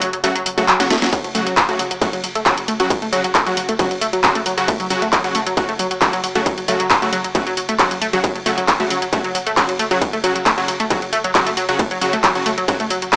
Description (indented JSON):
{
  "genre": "driving peak-time techno",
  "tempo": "135 BPM",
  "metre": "4/4",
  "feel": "straight",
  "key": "F# minor",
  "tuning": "A4 = 441 Hz",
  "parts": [
    { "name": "tight sequenced synth", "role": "riff", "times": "0.0-13.2 s", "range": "F#3 to A3", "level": "-24 LUFS", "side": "equal", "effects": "chorus, sidechain pumping, analog delay" },
    { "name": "supersaw stab", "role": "stabs", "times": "0.0-13.2 s", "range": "C#3 to F#4", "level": "-25 LUFS", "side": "equal", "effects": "cassette tape, sidechain pumping, analog delay" },
    { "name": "saturated sub bass", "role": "bass", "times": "0.0-13.1 s", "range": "F#1", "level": "-46 LUFS", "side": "equal", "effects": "overdrive, sidechain pumping, low-pass filter" },
    { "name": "techno drum kit", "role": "drums", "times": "0.0-13.2 s", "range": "handclaps, hi-hat, ride cymbal, snare drum", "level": "-22 LUFS", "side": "equal", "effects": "overdrive, sidechain pumping on hats, small room reverb, sidechain pumping on cymbals" },
    { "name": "electronic kick drum", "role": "drums", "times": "1.1-13.2 s", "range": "none", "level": "-25 LUFS", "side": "equal", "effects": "distortion, overdrive, small room reverb" }
  ],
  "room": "light reverb",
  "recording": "dry, gritty hardware recording, transformer saturation, small speaker sound",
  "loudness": "-18 LUFS",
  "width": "mono",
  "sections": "0.0-13.2 A section",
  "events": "break 0.0-1.1; drum fill 0.8-1.1",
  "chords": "0.0 F#5"
}